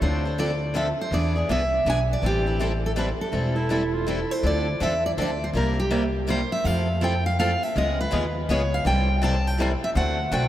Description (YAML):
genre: acoustic string swing (jazz manouche)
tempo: 163 BPM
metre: 3/4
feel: swing 63% on 8ths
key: unclear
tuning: A4 = 440 Hz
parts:
  - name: picked steel-string acoustic guitar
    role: melody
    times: 0.0-10.5 s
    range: G4 to A5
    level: -26 LUFS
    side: right 1 dB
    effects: none
  - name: picked steel-string acoustic guitar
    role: accompaniment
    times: 0.0-10.4 s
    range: C3 to B4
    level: -31 LUFS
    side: right 3 dB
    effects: none
  - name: picked swing-style acoustic guitar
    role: accompaniment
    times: 0.0-10.4 s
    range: C3 to A4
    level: -30 LUFS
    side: left 4 dB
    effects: none
  - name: upright bass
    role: bass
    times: 0.0-10.5 s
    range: E1 to F2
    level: -25 LUFS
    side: equal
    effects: none
  - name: clear clarinet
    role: second line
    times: 3.6-4.4 s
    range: E4 to F4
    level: -34 LUFS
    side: right 2 dB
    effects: none
room: wet cathedral reverb, RT60 5.0 s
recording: in a vast, echoing space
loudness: -21 LUFS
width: side -12 dB against mid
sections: 0.0-4.4 A section; 4.4-10.5 B section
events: none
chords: 0.0 Dm7; 1.1 E7; 2.2 Am7; 4.4 Dm9; 5.5 C7; 6.7 Fmaj7; 7.8 C#9; 8.9 C6; 10.0 D7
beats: | 0.02 0.39 0.75 | 1.12 1.49 1.86 | 2.23 2.60 2.97 | 3.34 3.70 4.07 | 4.44 4.81 5.18 | 5.55 5.92 6.28 | 6.65 7.02 7.39 | 7.75 8.12 8.49 | 8.86 9.22 9.59 | 9.96 10.33